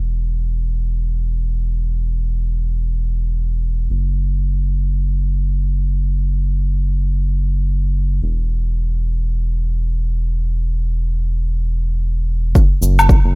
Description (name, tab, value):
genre	organic downtempo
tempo	free time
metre	none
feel	none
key	unclear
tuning	A4 = 441 Hz
part	round analog bass	bass	0.0-13.4 s	E1 to F#1	-17 LUFS	equal	sidechain pumping
part	cabasa and woodblock	drums	12.6-13.2 s	none	-17 LUFS	equal	none
part	electronic kick drum	drums	12.6-13.2 s	none	-11 LUFS	equal	none
room	little or no reverb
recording	rough home demo mix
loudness	-16 LUFS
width	side -29 dB against mid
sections	0.0-12.6 A section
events	none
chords	none